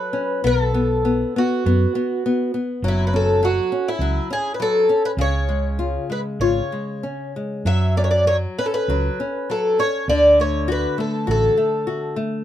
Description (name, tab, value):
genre	fado-style ballad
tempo	100 BPM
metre	4/4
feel	rubato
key	F# minor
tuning	A4 = 440 Hz
part	picked twelve-string acoustic guitar	melody	0.0-12.1 s	E4 to E5	-20 LUFS	equal	none
part	nylon-string guitar	accompaniment	0.0-12.4 s	C#3 to A4	-24 LUFS	left 3 dB	none
part	hollow-body short-scale fingered electric bass	bass	0.4-11.5 s	F#1 to F#2	-21 LUFS	right 1 dB	none
room	light reverb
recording	minimal, uncompressed stereo recording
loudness	-18 LUFS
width	side -11 dB against mid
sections	0.0-12.4 A section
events	none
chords	0.4 B5; 2.8 F#5; 5.2 C#; 7.7 F#5; 10.1 D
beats	| 0.45 1.05 1.66 2.24 | 2.83 3.41 4.00 4.58 | 5.18 5.79 6.40 7.03 | 7.65 8.27 8.88 9.49 | 10.08 10.68 11.27 11.87